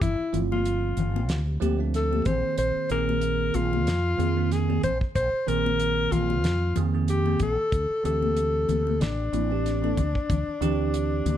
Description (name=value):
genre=electric jazz fusion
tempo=94 BPM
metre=4/4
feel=swing 55% on 16ths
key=unclear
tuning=A4 = 441 Hz
part: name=breathy alto saxophone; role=melody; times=0.0-11.4 s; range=D4 to C5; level=-27 LUFS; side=left 2 dB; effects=none
part: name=mellow fretless electric bass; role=bass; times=0.0-11.4 s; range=G1 to F2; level=-27 LUFS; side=equal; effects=none
part: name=damped 70s drum kit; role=drums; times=0.0-11.4 s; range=hi-hat, kick drum, snare drum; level=-30 LUFS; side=equal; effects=none
part: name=congas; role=percussion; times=0.0-11.4 s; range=none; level=-32 LUFS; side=left 8 dB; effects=none
part: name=bell-like tine electric piano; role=accompaniment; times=0.3-11.4 s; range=Eb3 to Bb4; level=-29 LUFS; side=right 8 dB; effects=phaser
room=light reverb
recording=dark, warm production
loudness=-22 LUFS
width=side -10 dB against mid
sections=0.0-11.4 A section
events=none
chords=0.0 G9sus4; 2.3 Bb9sus4; 7.7 D9sus4